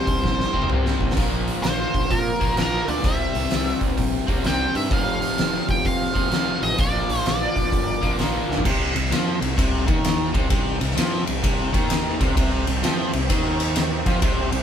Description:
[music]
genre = blues rock power trio and southern rock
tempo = 128 BPM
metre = 4/4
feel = swing 65% on 8ths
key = C mixolydian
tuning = A4 = 443 Hz
[part]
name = octave-fuzz lead guitar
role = melody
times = 0.0-8.2 s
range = Bb4 to G5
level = -25 LUFS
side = right 1 dB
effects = wah, distortion
[part]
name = overdriven tonewheel organ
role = sustained chords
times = 0.0-8.6, 12.1-14.6 s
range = A3 to E5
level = -35 LUFS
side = right 4 dB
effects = none
[part]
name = overdriven semi-hollow guitar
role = riff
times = 0.0-14.6 s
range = F2 to C4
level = -25 LUFS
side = left 1 dB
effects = none
[part]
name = fuzz picked electric bass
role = bass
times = 0.1-14.6 s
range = F1 to Bb2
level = -27 LUFS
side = equal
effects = overdrive
[part]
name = oversized low-tuned drum kit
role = drums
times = 0.1-14.6 s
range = crash cymbal, hi-hat, kick drum, ride cymbal, snare drum, splash cymbal, toms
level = -23 LUFS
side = equal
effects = none
[sound]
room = light reverb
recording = band playing live in one room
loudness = -19 LUFS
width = side -8 dB against mid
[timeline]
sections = 0.0-8.7 A section; 8.7-14.6 B section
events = drum fill 0.2-1.2, 8.4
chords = 0.0 C; 1.2 Bb; 3.0 C; 4.9 F; 6.8 Bb; 8.7 C

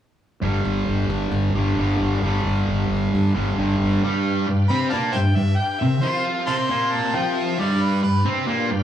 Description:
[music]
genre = rock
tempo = 134 BPM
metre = 4/4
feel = straight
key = unclear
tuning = A4 = 441 Hz
[part]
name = sludgy distorted guitar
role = riff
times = 0.4-8.8 s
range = G2 to F4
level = -20 LUFS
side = equal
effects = overdrive
[part]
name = fuzz fingered electric bass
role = bass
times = 0.4-4.0 s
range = G1 to G2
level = -22 LUFS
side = equal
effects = overdrive
[part]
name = overdriven tonewheel organ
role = sustained chords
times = 4.0-8.8 s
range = C4 to F#5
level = -31 LUFS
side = right 1 dB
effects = slow rotary speaker, chorus vibrato
[part]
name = clear harmonica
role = melody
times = 4.7-8.2 s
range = B4 to C6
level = -25 LUFS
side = equal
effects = overdrive, tape echo
[sound]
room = moderate club reverb, RT60 0.7 s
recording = small room ambience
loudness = -19 LUFS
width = side -10 dB against mid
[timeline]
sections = 0.4-4.0 A section; 4.0-8.8 B section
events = none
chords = 0.4 G5; 4.0 G7; 5.8 C7; 7.6 G7

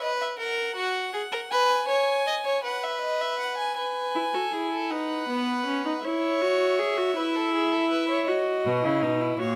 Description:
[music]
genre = classical, baroque-style fugue for string quartet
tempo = 53 BPM (dotted quarters)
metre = 6/8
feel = straight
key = E major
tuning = A4 = 441 Hz
[part]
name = rich violin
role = melody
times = 0.0-9.6 s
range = C#5 to G#5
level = -33 LUFS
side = equal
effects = none
[part]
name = rich violin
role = second line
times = 0.0-8.3 s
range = F#4 to D#5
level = -30 LUFS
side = equal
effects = none
[part]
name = warm viola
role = accompaniment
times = 4.2-9.6 s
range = B3 to G#4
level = -29 LUFS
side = equal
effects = none
[part]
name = rich cello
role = bass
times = 8.7-9.6 s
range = A#2 to C#3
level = -29 LUFS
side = equal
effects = none
[sound]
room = light reverb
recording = close, detailed microphones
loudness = -26 LUFS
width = mono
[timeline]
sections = 0.0-3.8 A section; 3.8-9.6 B section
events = none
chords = 0.4 F#; 1.5 N.C.; 3.8 E; 4.9 B; 6.0 N.C.; 8.3 B

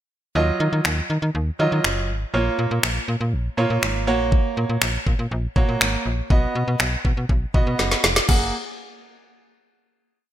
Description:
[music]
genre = dance-pop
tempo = 121 BPM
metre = 4/4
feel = straight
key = F# major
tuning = A4 = 440 Hz
[part]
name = bright grand piano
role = accompaniment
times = 0.4-8.5 s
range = F#3 to F#5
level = -24 LUFS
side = right 2 dB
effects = sidechain pumping
[part]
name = slap-like FM bass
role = bass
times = 0.4-8.5 s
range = E#1 to D#3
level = -23 LUFS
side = equal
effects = sidechain pumping
[part]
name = smooth R&B drum kit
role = drums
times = 0.8-8.4 s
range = crash cymbal, finger snaps, kick drum, snare drum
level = -20 LUFS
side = equal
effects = gated reverb
[sound]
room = light reverb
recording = bright 1980s-style digital production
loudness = -19 LUFS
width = side -12 dB against mid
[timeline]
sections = 0.4-8.3 verse; 8.3-10.3 final chord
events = drum fill 7.8-8.3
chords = 0.4 D#madd9; 2.3 A#m; 4.1 F#/A#; 6.3 B; 8.3 F#add9

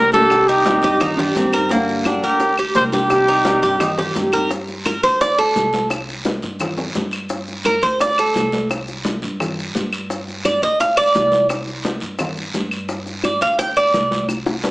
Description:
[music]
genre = latin, Cuban son and guajira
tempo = 172 BPM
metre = 4/4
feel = straight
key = G minor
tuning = A4 = 435 Hz
[part]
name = breathy trumpet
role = melody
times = 0.0-3.9 s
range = G4 to C5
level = -16 LUFS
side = equal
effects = none
[part]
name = nylon-string guitar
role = accompaniment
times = 0.0-4.5 s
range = C3 to G4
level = -22 LUFS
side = left 1 dB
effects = none
[part]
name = Cuban tres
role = arpeggios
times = 0.0-14.3 s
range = Bb3 to G5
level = -17 LUFS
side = right 1 dB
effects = none
[part]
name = upright bass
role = bass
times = 0.0-14.7 s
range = C2 to G2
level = -30 LUFS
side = equal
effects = none
[part]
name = congas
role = percussion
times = 0.1-14.7 s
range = none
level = -26 LUFS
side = equal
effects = none
[part]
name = guiro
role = percussion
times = 0.1-14.7 s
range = none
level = -31 LUFS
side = right 1 dB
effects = none
[part]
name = maracas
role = percussion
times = 0.1-14.7 s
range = none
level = -39 LUFS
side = left 2 dB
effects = none
[part]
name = bongos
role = percussion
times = 0.3-14.7 s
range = none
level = -27 LUFS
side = left 2 dB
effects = none
[part]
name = claves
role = percussion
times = 0.3-14.5 s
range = none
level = -28 LUFS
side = left 1 dB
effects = none
[part]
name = nylon-string guitar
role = second line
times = 0.8-2.1 s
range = Bb3 to Eb4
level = -22 LUFS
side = right 1 dB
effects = slapback echo
[sound]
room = moderate large studio reverb, RT60 1.0 s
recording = small speaker sound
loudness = -16 LUFS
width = side -21 dB against mid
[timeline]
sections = 0.0-4.5 A section; 4.5-14.7 B section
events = Cuban tres solo 4.5-14.7; drum fill 14.3-14.7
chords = 0.3 Cm; 1.7 Gm; 3.1 Cm; 4.5 G5; 5.9 C5; 7.3 G5; 8.7 C5; 10.1 G5; 11.5 C5; 12.9 G5

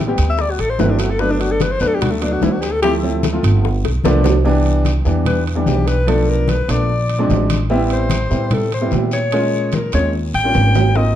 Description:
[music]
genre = Afro-Cuban jazz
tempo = 148 BPM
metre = 4/4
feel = straight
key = G major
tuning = A4 = 444 Hz
[part]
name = upright bass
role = bass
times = 0.0-11.2 s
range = G1 to Bb2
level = -18 LUFS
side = right 1 dB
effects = none
[part]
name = warm baby grand piano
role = accompaniment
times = 0.1-11.2 s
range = E3 to G4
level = -20 LUFS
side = equal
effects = none
[part]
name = bongos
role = percussion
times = 0.2-4.3, 11.0-11.2 s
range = none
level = -26 LUFS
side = left 9 dB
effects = none
[part]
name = congas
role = percussion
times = 0.2-11.2 s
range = none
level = -24 LUFS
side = left 3 dB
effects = none
[part]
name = guiro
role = percussion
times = 0.2-11.2 s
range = none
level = -36 LUFS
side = left 6 dB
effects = none
[part]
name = timbales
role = percussion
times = 0.2-10.8 s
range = none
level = -26 LUFS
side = right 9 dB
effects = none
[part]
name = clear alto saxophone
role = melody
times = 0.3-11.2 s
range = A3 to G5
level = -20 LUFS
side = left 3 dB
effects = plate reverb
[sound]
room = moderate large studio reverb, RT60 0.8 s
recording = dark, warm production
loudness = -14 LUFS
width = side -11 dB against mid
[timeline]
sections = 0.0-4.5 A section; 4.5-11.2 A section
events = alto saxophone solo 0.0-11.2; drum fill 3.8-4.5, 10.5-11.0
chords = 0.4 D7; 1.2 Gmaj7; 2.8 Dm7; 3.6 G7; 4.5 Cmaj9; 6.1 Bm7b5; 6.9 Bb9; 7.7 Am7; 9.3 Bbm7; 10.1 Eb7

